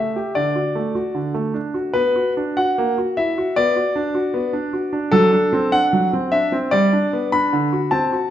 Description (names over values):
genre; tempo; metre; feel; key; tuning
classical-period piano sonatina; 76 BPM; 2/4; rubato; unclear; A4 = 440 Hz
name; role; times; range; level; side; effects
clear concert grand piano; solo; 0.0-8.3 s; D3 to B5; -17 LUFS; equal; none
room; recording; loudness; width
wet recital hall reverb, RT60 1.6 s; none; -17 LUFS; side -11 dB against mid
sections
0.0-8.3 A section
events
none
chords
0.4 D; 1.9 Bm; 2.8 F#7/A#; 3.6 Bm; 5.1 D7/F#; 6.7 G; 7.5 D7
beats
| 0.36 1.14 | 1.94 2.78 | 3.56 4.34 | 5.12 5.93 | 6.72 7.53